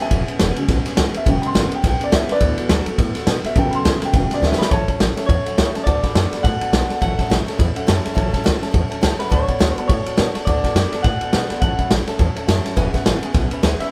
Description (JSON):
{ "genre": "rockabilly", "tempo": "209 BPM", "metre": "4/4", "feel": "swing 59% on 8ths", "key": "A major", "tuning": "A4 = 440 Hz", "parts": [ { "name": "dark upright piano", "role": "accompaniment", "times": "0.0-13.9 s", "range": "C#3 to C6", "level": "-28 LUFS", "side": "equal", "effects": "none" }, { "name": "picked steel-string acoustic guitar", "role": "accompaniment", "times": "0.0-13.9 s", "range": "A2 to A4", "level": "-30 LUFS", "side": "equal", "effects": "none" }, { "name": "upright bass", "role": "bass", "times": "0.0-13.8 s", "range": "E1 to B2", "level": "-24 LUFS", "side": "equal", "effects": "none" }, { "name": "vintage drum kit", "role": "drums", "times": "0.1-13.9 s", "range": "kick drum, ride cymbal, snare drum", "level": "-21 LUFS", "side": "equal", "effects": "none" }, { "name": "electric guitar through a small old amp", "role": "melody", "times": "4.6-13.9 s", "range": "B4 to F#5", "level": "-27 LUFS", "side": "equal", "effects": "none" } ], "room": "light reverb", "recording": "band playing live in one room", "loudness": "-18 LUFS", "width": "mono", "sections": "0.0-4.7 A section; 4.7-13.9 B section", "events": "upright piano solo 0.0-4.7; drum fill 4.4", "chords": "0.0 E6; 2.4 D6; 3.6 A6; 4.1 E6; 4.7 A6; 5.9 D6; 7.0 A6; 9.3 D6; 11.6 A6; 12.8 E6" }